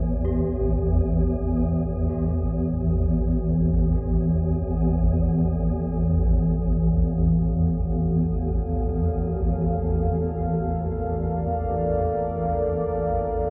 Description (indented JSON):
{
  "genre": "dark ambient drone",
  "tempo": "free time",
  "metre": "none",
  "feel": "none",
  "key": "unclear",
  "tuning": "A4 = 438 Hz",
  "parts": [
    { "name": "gamelan-type bronze metallophone", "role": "arpeggios", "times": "0.0-7.6 s", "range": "E3 to G4", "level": "-38 LUFS", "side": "equal", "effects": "dub echo" },
    { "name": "swarming drone", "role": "drone", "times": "0.0-13.5 s", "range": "A1 to E2", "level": "-24 LUFS", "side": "equal", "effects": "built-in reverb" },
    { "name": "deep dark ambient pad", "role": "sustained chords", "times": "6.0-13.5 s", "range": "A4 to F5", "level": "-31 LUFS", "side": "equal", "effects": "chorus, built-in reverb" }
  ],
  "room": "wet echo chamber reverb, RT60 2.3 s",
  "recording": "echo-heavy mix, cassette tape",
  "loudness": "-24 LUFS",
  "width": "mono",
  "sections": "0.0-13.5 A section",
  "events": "fade-in on bronze metallophone 0.0-13.5; fade-out 11.0-13.5",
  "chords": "0.0 A5; 4.5 Gm/A"
}